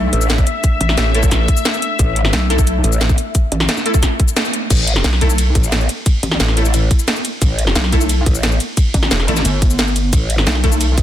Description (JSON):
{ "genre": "dark technical drum and bass", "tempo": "177 BPM", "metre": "4/4", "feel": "straight", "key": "unclear", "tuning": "A4 = 442 Hz", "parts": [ { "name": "sweeping resonant pad", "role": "sustained chords", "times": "0.0-4.7 s", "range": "A3 to E5", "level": "-23 LUFS", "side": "left 4 dB", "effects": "chorus, sidechain pumping" }, { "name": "pulsing pluck wobble bass", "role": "bass", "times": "0.0-11.0 s", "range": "G1 to B1", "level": "-16 LUFS", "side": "equal", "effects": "chorus" }, { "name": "growl bass", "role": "bass", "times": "0.1-11.0 s", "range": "E1 to A1", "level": "-16 LUFS", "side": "equal", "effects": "chorus, overdrive, sidechain pumping" }, { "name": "drum and bass drum kit", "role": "drums", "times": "0.1-11.0 s", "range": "crash cymbal, hi-hat, ride cymbal, shaker, snare drum", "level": "-18 LUFS", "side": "equal", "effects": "none" }, { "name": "electronic kick drum", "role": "drums", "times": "0.4-11.0 s", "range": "none", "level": "-14 LUFS", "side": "equal", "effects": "none" }, { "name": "orchestra-hit-like synth stab", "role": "stabs", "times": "1.1-10.7 s", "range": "A3 to A4", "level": "-24 LUFS", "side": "equal", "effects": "built-in reverb, digital delay" } ], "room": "digital ambience", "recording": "dense, heavily limited modern master", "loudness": "-13 LUFS", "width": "side -12 dB against mid", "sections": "0.0-4.7 A section; 4.7-11.0 A section", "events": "drop 0.0-4.7, 4.7-11.0; break 4.4-4.7; band accent 4.4", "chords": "0.0 A5", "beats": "0.30 | 0.64 0.98 1.31 1.65 | 1.99 2.33 2.67 3.01 | 3.35 3.69 4.03 4.37 | 4.70 5.04 5.38 5.72 | 6.06 6.40 6.74 7.08 | 7.42 7.75 8.09 8.43 | 8.77 9.11 9.45 9.79 | 10.13 10.47 10.81" }